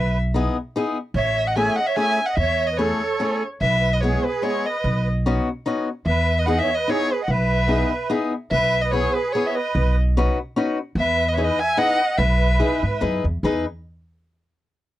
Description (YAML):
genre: musette waltz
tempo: 147 BPM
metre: 3/4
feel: swing 54% on 8ths, rubato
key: E major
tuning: A4 = 440 Hz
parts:
  - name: dark violin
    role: melody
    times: 0.0-13.0 s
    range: B4 to G#5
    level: -22 LUFS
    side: equal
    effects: none
  - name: musette accordion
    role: second line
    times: 0.0-13.0 s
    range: G#4 to E5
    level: -26 LUFS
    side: right 6 dB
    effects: none
  - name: upright bass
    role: bass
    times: 0.0-13.6 s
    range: A1 to G#2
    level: -22 LUFS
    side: equal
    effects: none
  - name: picked swing-style acoustic guitar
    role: accompaniment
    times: 0.3-13.6 s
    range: G#3 to B4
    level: -22 LUFS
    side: left 3 dB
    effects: none
room: little or no reverb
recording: dry, close 1970s-style studio recording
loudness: -19 LUFS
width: side -14 dB against mid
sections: 0.0-8.5 A section; 8.5-13.4 B section; 13.4-14.7 C section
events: none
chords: 0.0 Emaj7; 1.1 Amaj7; 3.6 E/B; 4.8 Badd9; 6.1 Emaj7; 8.5 E/B; 9.7 Badd9; 11.0 Emaj7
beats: 0.34 0.74 | 1.15 1.55 1.96 | 2.37 2.78 3.19 | 3.61 4.02 4.44 | 4.85 5.26 5.66 | 6.07 6.47 6.88 | 7.28 7.69 8.10 | 8.52 8.93 9.34 | 9.74 10.15 10.55 | 10.96 11.36 11.77 | 12.18 12.59 13.01 | 13.43